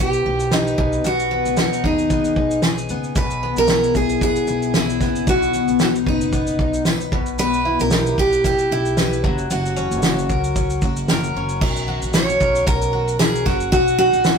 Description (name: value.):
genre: acoustic pop.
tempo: 114 BPM.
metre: 4/4.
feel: swing 55% on 16ths.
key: unclear.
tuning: A4 = 440 Hz.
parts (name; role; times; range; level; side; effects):
picked steel-string acoustic guitar; melody; 0.0-14.4 s; D#4 to C#5; -20 LUFS; right 1 dB; ping-pong delay.
picked twelve-string acoustic guitar; accompaniment; 0.0-14.4 s; B2 to B4; -24 LUFS; left 5 dB; none.
upright bass; bass; 0.0-14.4 s; F#1 to D#2; -26 LUFS; equal; none.
natural country drum kit; drums; 0.1-14.4 s; crash cymbal, kick drum, shaker, snare drum; -21 LUFS; right 1 dB; none.
tambourine; percussion; 3.7-14.4 s; none; -38 LUFS; left 4 dB; none.
room: moderate studio reverb, RT60 0.6 s.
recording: rough rehearsal-room recording, warm saturation.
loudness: -16 LUFS.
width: side -6 dB against mid.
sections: 0.0-11.6 A section; 11.6-14.4 B section.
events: none.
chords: 0.0 Em/B (rootless); 0.8 G#m/B; 3.2 E/B; 5.3 B; 7.1 Em/B; 9.2 F#; 13.7 G#m7 (rootless).